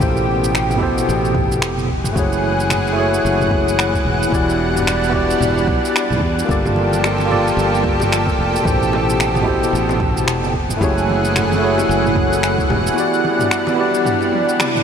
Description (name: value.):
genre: sunset chillout.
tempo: 111 BPM.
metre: 4/4.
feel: swing 57% on 16ths.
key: unclear.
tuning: A4 = 440 Hz.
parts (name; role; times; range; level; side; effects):
bright tine electric piano; accompaniment; 0.0-14.8 s; B2 to D5; -19 LUFS; equal; medium tremolo, auto-pan, analog delay.
lush unison pad; sustained chords; 0.0-14.8 s; B2 to F#5; -19 LUFS; equal; chorus.
sustaining fretless electric bass; bass; 0.0-12.9 s; E1 to E2; -22 LUFS; equal; none.
deep house drum kit; drums; 0.0-14.8 s; finger snaps, shaker, toms; -24 LUFS; equal; overdrive.
electronic kick drum; drums; 0.0-12.7 s; none; -22 LUFS; equal; overdrive.
bongos and congas; percussion; 6.7-14.7 s; none; -29 LUFS; left 2 dB; none.
room: wet huge ambient reverb, RT60 7.7 s.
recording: dreamy mix soaked in reverb.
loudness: -14 LUFS.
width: side -7 dB against mid.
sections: 0.0-14.8 A section.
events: drum fill 14.3-14.8; band accent 14.6.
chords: 0.0 Am9; 1.9 F#m9; 4.3 Em9; 6.5 Gm9; 8.6 Am9; 10.5 F#m9; 13.0 Em9.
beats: | 0.00 0.54 1.08 1.62 | 2.16 2.70 3.24 3.78 | 4.32 4.87 5.41 5.95 | 6.49 7.03 7.57 8.11 | 8.65 9.19 9.73 10.27 | 10.81 11.35 11.89 12.43 | 12.97 13.51 14.05 14.60.